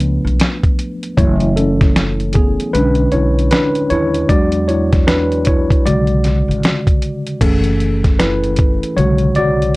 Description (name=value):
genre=lo-fi hip hop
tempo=77 BPM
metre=4/4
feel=swing 61% on 16ths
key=B dorian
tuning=A4 = 440 Hz
part: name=mellow tine electric piano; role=accompaniment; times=0.0-9.8 s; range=C#3 to D5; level=-16 LUFS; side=equal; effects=medium stereo tremolo, cassette tape, low-pass filter
part: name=upright bass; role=bass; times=0.0-9.7 s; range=F#1 to E2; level=-18 LUFS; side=equal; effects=none
part: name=dusty soul sampler-style drum kit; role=drums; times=0.0-9.8 s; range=crash cymbal, finger snaps, hi-hat, kick drum, snare drum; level=-15 LUFS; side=equal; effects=none
room=light reverb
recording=cassette tape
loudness=-12 LUFS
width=side -22 dB against mid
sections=0.0-7.4 A section; 7.4-9.8 B section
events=tine electric piano solo 0.0-7.4, 7.4-9.8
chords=0.0 C#aug7; 1.2 F#m7; 2.7 Bm69; 4.3 E9; 5.9 Bm69; 7.4 F#m9; 9.0 Bm69